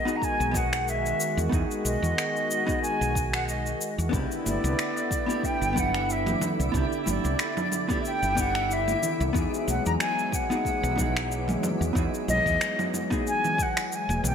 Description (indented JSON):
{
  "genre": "sunset chillout",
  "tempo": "92 BPM",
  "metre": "4/4",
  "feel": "swing 55% on 16ths",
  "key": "unclear",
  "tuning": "A4 = 440 Hz",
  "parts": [
    { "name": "concert flute", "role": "melody", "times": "0.0-14.3 s", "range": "D5 to Bb5", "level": "-29 LUFS", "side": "equal", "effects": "ping-pong delay" },
    { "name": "vintage hollow-body jazz guitar", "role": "accompaniment", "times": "0.0-13.6 s", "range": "D#3 to G#4", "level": "-32 LUFS", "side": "moving between left 5 dB and right 5 dB", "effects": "auto-pan, digital delay" },
    { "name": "lush unison pad", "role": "sustained chords", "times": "0.0-14.3 s", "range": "D3 to F#4", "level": "-33 LUFS", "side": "left 1 dB", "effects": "chorus" },
    { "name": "electronic cabasa, finger snaps and congas", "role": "drums", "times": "0.1-14.3 s", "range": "none", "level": "-32 LUFS", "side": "right 1 dB", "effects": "none" },
    { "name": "electronic kick drum", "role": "drums", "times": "0.2-13.7 s", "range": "none", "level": "-31 LUFS", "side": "equal", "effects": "none" },
    { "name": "woody fretless electric bass", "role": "bass", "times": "0.4-14.3 s", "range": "E1 to E2", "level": "-29 LUFS", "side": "equal", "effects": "none" },
    { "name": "twinkling granular texture", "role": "texture", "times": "5.0-14.3 s", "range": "E4 to D6", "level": "-39 LUFS", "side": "right 1 dB", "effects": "built-in reverb, wide subtle chorus" },
    { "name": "congas", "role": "percussion", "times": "4.5-14.3 s", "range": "none", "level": "-36 LUFS", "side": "right 2 dB", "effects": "none" }
  ],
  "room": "moderate plate reverb, RT60 2.1 s",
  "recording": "bright 1980s-style digital production",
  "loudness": "-24 LUFS",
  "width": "side -7 dB against mid",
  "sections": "0.0-14.3 A section",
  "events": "none",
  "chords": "0.0 Emaj9 (rootless); 4.1 Cmaj9 (rootless); 9.3 Emaj9"
}